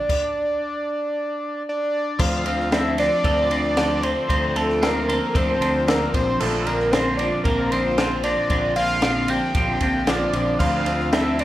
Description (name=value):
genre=indie rock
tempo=114 BPM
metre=4/4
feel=straight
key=D minor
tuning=A4 = 440 Hz
part: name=fat analog lead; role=melody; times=0.0-11.4 s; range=A4 to G5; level=-23 LUFS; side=equal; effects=none
part: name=twelve-string electric guitar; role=riff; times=0.0-11.4 s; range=Bb2 to A4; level=-24 LUFS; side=equal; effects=phaser
part: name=compact cocktail drum kit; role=drums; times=0.1-11.4 s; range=crash cymbal, kick drum, ride cymbal, snare drum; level=-25 LUFS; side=equal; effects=none
part: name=growling fingered electric bass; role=bass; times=2.2-11.4 s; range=Bb1 to D2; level=-28 LUFS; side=equal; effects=overdrive
room=wet recital hall reverb, RT60 1.5 s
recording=recorded in a church or concert hall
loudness=-19 LUFS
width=side -14 dB against mid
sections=0.0-2.2 A section; 2.2-11.4 B section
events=none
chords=0.0 N.C.; 2.2 Dm7; 6.1 Bbadd9; 10.6 Dm7